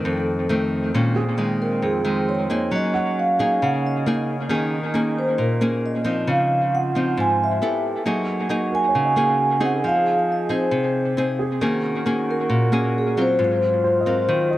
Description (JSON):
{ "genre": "bossa nova", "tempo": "135 BPM", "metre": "4/4", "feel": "straight", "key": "Bb minor", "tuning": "A4 = 440 Hz", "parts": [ { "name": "vibraphone with soft mallets", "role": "melody", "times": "0.0-14.6 s", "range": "Ab4 to Ab5", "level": "-23 LUFS", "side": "right 1 dB", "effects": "dub echo" }, { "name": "nylon-string guitar", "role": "accompaniment", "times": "0.0-14.6 s", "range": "F2 to A4", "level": "-21 LUFS", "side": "equal", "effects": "dub echo" }, { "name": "breathy trombone", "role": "second line", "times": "0.9-14.6 s", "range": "C4 to Bb4", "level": "-29 LUFS", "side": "right 3 dB", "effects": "none" }, { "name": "warm baby grand piano", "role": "accompaniment", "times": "1.2-4.5, 8.7-14.6 s", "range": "Gb4 to Eb5", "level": "-31 LUFS", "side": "right 4 dB", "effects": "none" } ], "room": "moderate spring reverb, RT60 1.2 s, studio reverb", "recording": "echo-heavy mix, cassette tape", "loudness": "-18 LUFS", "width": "side -15 dB against mid", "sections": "0.9-14.6 A section", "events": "none", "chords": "0.1 F7; 0.9 Bbm11; 2.7 Gb69; 4.5 Eb7sus4; 6.3 Dbmaj9; 7.6 G69; 8.1 Gb69; 9.8 Fm7; 11.6 Eb7sus4; 13.4 Ab13" }